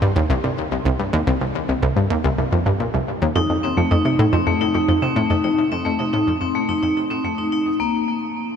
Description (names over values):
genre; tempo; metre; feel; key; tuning
ambient, sequencer-driven space music; 108 BPM; 4/4; straight; unclear; A4 = 440 Hz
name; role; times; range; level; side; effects
analog pluck; riff; 0.0-8.1 s; C2 to C3; -20 LUFS; equal; chorus, ping-pong delay
vibraphone with hard mallets; arpeggios; 3.4-8.1 s; A3 to Eb4; -19 LUFS; left 2 dB; auto-pan, ping-pong delay
room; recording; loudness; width
wet huge ambient reverb, RT60 7.5 s; none; -18 LUFS; side -7 dB against mid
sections
0.0-3.4 A section; 3.4-7.8 B section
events
fade-out on synth arpeggio sound 3.4-7.8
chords
0.0 Cm; 3.4 F7; 7.8 Bbsus2/C